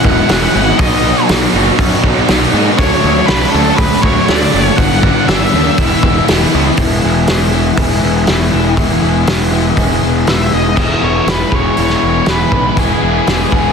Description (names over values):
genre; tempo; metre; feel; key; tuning
rock, shoegaze and dream pop; 120 BPM; 4/4; straight; unclear; A4 = 440 Hz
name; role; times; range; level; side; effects
octave-fuzz lead guitar; melody; 0.0-6.2, 10.3-13.7 s; G#4 to F#5; -18 LUFS; left 2 dB; distortion, analog delay
electric guitar through a small old amp; arpeggios; 0.0-13.7 s; E3 to A4; -22 LUFS; right 3 dB; lush chorus, analog delay
overdriven electric guitar; riff; 0.0-13.7 s; G2 to E4; -18 LUFS; right 12 dB; reverse reverb
overdriven semi-hollow guitar; riff; 0.0-13.7 s; G2 to E4; -17 LUFS; left 12 dB; wide subtle chorus
tight distorted guitar; riff; 0.0-6.8, 10.8-13.7 s; G2 to E4; -19 LUFS; right 1 dB; distortion
fuzz picked electric bass; bass; 0.0-13.7 s; E1 to G#2; -16 LUFS; equal; overdrive
loose indie drum kit; drums; 0.0-13.6 s; crash cymbal, hi-hat, kick drum, snare drum; -16 LUFS; equal; soft clipping on kick
room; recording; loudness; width
light reverb, studio reverb; dense, heavily limited modern master; -10 LUFS; side -6 dB against mid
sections
0.0-6.8 A section; 6.8-10.8 B section; 10.8-13.7 C section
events
none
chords
0.0 E69; 0.8 Bmaj7; 2.8 Dmaj7; 4.8 G69; 5.8 E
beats
0.29 | 0.79 1.29 1.79 2.29 | 2.78 3.28 3.78 4.28 | 4.78 5.28 5.78 6.27 | 6.77 7.27 7.77 8.27 | 8.77 9.27 9.77 10.27 | 10.77 11.27 11.77 12.27 | 12.77 13.27